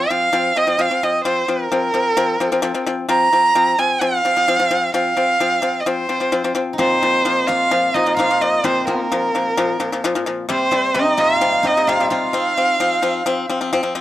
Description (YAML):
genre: mongolian traditional, Mongolian folk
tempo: 130 BPM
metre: 4/4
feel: straight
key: unclear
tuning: A4 = 440 Hz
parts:
  - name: clear erhu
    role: melody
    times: 0.0-13.7 s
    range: Bb4 to Bb5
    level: -17 LUFS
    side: right 2 dB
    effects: none
  - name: steel-string zither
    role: second line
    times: 0.0-1.0, 6.7-14.0 s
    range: Bb3 to F4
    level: -22 LUFS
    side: equal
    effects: none
  - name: pipa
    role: arpeggios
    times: 0.0-14.0 s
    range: Bb2 to C4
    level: -20 LUFS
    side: left 3 dB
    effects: none
room: light reverb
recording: dry, close 1970s-style studio recording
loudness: -15 LUFS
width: side -14 dB against mid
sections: 0.0-14.0 A section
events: none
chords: 0.0 F5; 6.8 Bb5; 10.5 C5; 12.3 F5